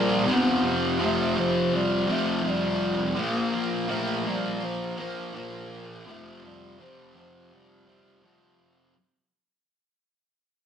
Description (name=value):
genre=rock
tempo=83 BPM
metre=4/4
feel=straight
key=unclear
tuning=A4 = 439 Hz
part: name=breathy bass clarinet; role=melody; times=0.0-8.6 s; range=F3 to B3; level=-28 LUFS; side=left 1 dB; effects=none
part: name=fuzz guitar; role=riff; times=0.0-8.9 s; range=F2 to Bb3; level=-26 LUFS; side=equal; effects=distortion
room=wet stone room reverb, RT60 1.0 s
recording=rough rehearsal-room recording, tube saturation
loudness=-23 LUFS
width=side -8 dB against mid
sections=0.0-9.0 A section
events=fade-out 0.0-9.0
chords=0.3 Fsus2; 3.2 Bb5; 6.1 Fsus2